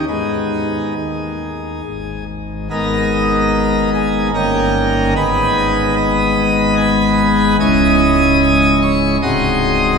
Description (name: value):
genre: classical, chorale-style piece for pipe organ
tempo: 67-76 BPM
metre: 3/4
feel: rubato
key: G# minor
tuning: A4 = 440 Hz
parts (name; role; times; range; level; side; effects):
- pipe organ, plenum; solo; 0.0-10.0 s; B#0 to D#6; -13 LUFS; equal; none
room: wet cathedral reverb, RT60 4.3 s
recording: recorded in a church or concert hall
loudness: -13 LUFS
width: side -5 dB against mid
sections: 0.0-2.7 A section; 2.7-10.0 A section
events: none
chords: 0.1 G#m; 4.3 D#7/G; 5.2 G#m; 7.6 C#m; 9.2 G#7/B#